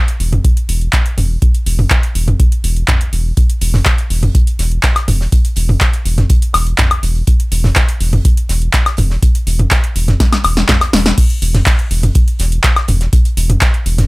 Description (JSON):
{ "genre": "acid house", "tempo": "123 BPM", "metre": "4/4", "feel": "straight", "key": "unclear", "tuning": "A4 = 439 Hz", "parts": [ { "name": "electro analog drum machine", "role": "drums", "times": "0.1-14.1 s", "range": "crash cymbal, handclaps, hi-hat, snare drum, toms, woodblock", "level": "-15 LUFS", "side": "equal", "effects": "none" }, { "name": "round analog bass", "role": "bass", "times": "0.2-14.1 s", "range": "E1", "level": "-14 LUFS", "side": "equal", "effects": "tube saturation, sidechain pumping" }, { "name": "electronic kick drum", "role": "drums", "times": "0.4-13.7 s", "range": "none", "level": "-12 LUFS", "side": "equal", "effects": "none" }, { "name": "damped 70s drum kit", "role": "drums", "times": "3.4-14.1 s", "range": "hi-hat, snare drum", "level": "-30 LUFS", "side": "right 2 dB", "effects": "high-pass filter on hats, high-pass filter on snare, high-pass filter on room" } ], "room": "little or no reverb", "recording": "none", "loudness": "-11 LUFS", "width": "side -24 dB against mid", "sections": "0.0-11.2 A section; 11.2-14.1 B section", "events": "drum fill 10.2-11.2; drop 11.2-14.1", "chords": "none" }